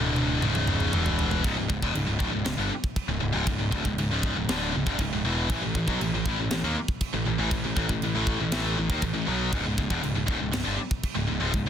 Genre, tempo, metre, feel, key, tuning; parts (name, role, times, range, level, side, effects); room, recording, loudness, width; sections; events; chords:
heavy metal; 119 BPM; 4/4; straight; C# minor; A4 = 439 Hz
high-gain distorted guitar; riff; 0.0-11.7 s; C#2 to B3; -27 LUFS; left 1 dB; distortion
fuzz picked electric bass; bass; 0.0-11.7 s; C#1 to D#2; -30 LUFS; equal; overdrive
tight metal drum kit; drums; 0.2-11.7 s; crash cymbal, kick drum, snare drum, toms; -30 LUFS; equal; soft clipping on kick
little or no reverb; dense, heavily limited modern master; -24 LUFS; side -9 dB against mid
0.0-1.4 A section; 1.4-11.7 B section
drum fill 0.0-1.4; half time 0.0-1.4
0.4 C#5; 0.9 E5; 1.4 C#m; 5.5 A5; 9.5 C#5